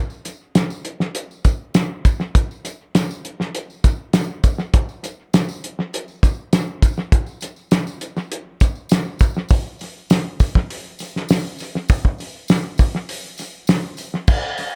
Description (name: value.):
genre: rock.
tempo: 101 BPM.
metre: 4/4.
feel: straight.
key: none.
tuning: none.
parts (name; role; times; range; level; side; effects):
tambourine; percussion; 0.1-14.7 s; none; -42 LUFS; equal; none.
cloth-damped thuddy drum kit; drums; 0.3-14.7 s; crash cymbal, hi-hat, kick drum, snare drum; -19 LUFS; equal; analog delay.
room: little or no reverb.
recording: echo-heavy mix.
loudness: -20 LUFS.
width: mono.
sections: 0.0-9.5 A section; 9.5-14.8 B section.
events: none.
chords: none.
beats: 0.56 1.15 1.75 | 2.35 2.94 3.54 4.14 | 4.74 5.33 5.93 6.53 | 7.12 7.72 8.31 8.91 | 9.51 10.10 10.70 11.29 | 11.89 12.48 13.08 13.68 | 14.28.